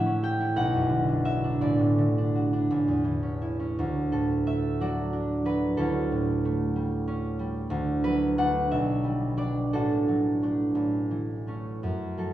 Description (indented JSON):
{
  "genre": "classical, solo harp piece",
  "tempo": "54-64 BPM (dotted quarters)",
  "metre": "6/8",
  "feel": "rubato",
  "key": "D major",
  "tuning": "A4 = 440 Hz",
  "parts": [
    { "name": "concert harp", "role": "solo", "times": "0.0-12.3 s", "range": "A1 to G5", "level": "-24 LUFS", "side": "right 1 dB", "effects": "none" }
  ],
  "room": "wet recital hall reverb, RT60 1.8 s",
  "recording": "recorded in a church or concert hall, small room ambience",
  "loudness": "-24 LUFS",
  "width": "side -13 dB against mid",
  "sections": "0.0-3.8 A section; 3.8-12.3 B section",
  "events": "none",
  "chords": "0.0 A7; 0.6 Bm; 1.6 D/A; 2.7 A; 3.8 D; 5.8 A7/D; 7.7 D; 8.7 G/B; 9.7 D/A; 10.8 A",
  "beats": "0.56 | 1.61 2.70 | 3.77 4.80 | 5.78 6.74 | 7.70 8.70 | 9.72 10.76 | 11.84"
}